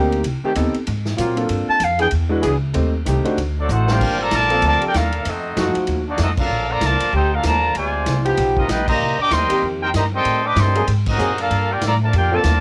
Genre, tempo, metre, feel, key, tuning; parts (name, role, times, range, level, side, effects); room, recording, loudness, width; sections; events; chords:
jazz, big band swing; 192 BPM; 4/4; swing 60% on 8ths; G minor; A4 = 439 Hz
clear concert grand piano; accompaniment; 0.0-3.4 s; G#3 to C5; -25 LUFS; equal; cassette tape
clear trombone section; sustained chords; 0.0-6.0, 8.2-12.4 s; G2 to C5; -23 LUFS; equal; cassette tape
upright bass; bass; 0.0-12.6 s; G1 to Bb2; -23 LUFS; equal
swinging big-band drum kit; drums; 0.1-12.5 s; crash cymbal, hi-hat, kick drum, ride cymbal, snare drum; -30 LUFS; equal; cassette tape
breathy clarinet; melody; 1.7-2.1 s; F5 to A5; -20 LUFS; equal; cassette tape, plate reverb
clear trumpet section; melody; 3.6-12.6 s; Bb3 to D6; -22 LUFS; equal; cassette tape
muted trombone section; second line; 3.6-12.6 s; C3 to G4; -30 LUFS; equal; cassette tape
moderate booth ambience, RT60 0.2 s; home recording on cassette; -19 LUFS; mono
0.0-4.0 A section; 4.0-12.6 B section
clarinet solo 0.0-4.0; drum fill 3.7-4.0; band accent 6.3, 8.8, 11.0
0.2 Am7b5; 0.9 Ab9; 1.5 Gm11; 2.1 E7; 2.7 Am7b5; 3.4 D7b9; 4.0 Gm11; 5.3 F7b9; 6.5 Bbmaj7; 7.8 Dm7b5; 8.4 G7alt; 9.0 Cm7; 10.3 Am7b5; 10.9 Ab9; 11.5 Gm9